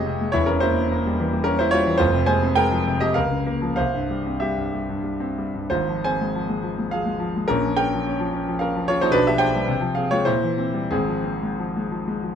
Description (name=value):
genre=classical, romantic character piece for solo piano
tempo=85-115 BPM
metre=3/4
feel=rubato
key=F minor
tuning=A4 = 443 Hz
part: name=bright grand piano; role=solo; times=0.0-12.3 s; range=E1 to Ab5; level=-20 LUFS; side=equal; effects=none
room=light reverb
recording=dark, warm production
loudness=-20 LUFS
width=side -8 dB against mid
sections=0.0-12.3 A section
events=none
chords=0.4 Edim7; 2.0 Fm; 3.1 Bbm/Db; 3.8 C; 5.7 Fm/Ab; 7.5 Bbm; 9.1 G7/B; 9.7 Fm/C; 10.3 C7/Bb; 10.9 Fm/Ab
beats=| 0.36 0.91 1.46 | 2.01 2.55 3.15 | 3.77 4.41 5.03 | 5.71 6.34 6.91 | 7.48 8.06 8.62 | 9.15 9.68 10.28 | 10.92 11.59 12.25